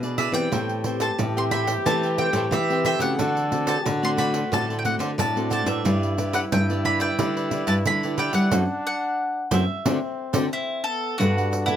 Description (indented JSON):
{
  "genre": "samba and choro",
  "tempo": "90 BPM",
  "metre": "4/4",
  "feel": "straight",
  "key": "unclear",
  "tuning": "A4 = 440 Hz",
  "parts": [
    { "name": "mandolin", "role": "melody", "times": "0.0-11.8 s", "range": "E4 to C6", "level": "-27 LUFS", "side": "equal", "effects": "none" },
    { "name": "bright trombone", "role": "second line", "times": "0.0-11.8 s", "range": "B3 to A4", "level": "-29 LUFS", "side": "equal", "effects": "none" },
    { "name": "cavaquinho", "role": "accompaniment", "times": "0.0-11.8 s", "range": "D4 to G5", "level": "-30 LUFS", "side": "right 3 dB", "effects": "none" },
    { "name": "nylon-string guitar", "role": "accompaniment", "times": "0.0-11.8 s", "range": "A2 to B4", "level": "-30 LUFS", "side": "left 2 dB", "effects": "none" },
    { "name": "nylon-string guitar", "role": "bass", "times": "0.0-11.8 s", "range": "F#2 to G3", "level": "-25 LUFS", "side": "equal", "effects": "none" },
    { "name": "pandeiro", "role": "percussion", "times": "0.0-11.8 s", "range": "none", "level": "-29 LUFS", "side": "right 3 dB", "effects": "none" }
  ],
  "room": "light reverb",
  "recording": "close, detailed microphones",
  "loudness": "-21 LUFS",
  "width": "side -10 dB against mid",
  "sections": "0.0-11.2 A section",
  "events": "band accent 8.5-11.2",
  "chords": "0.0 E7; 0.5 Am9; 3.2 D7; 5.9 G6; 8.5 F#m7b5; 9.9 D9; 11.2 Gmaj9"
}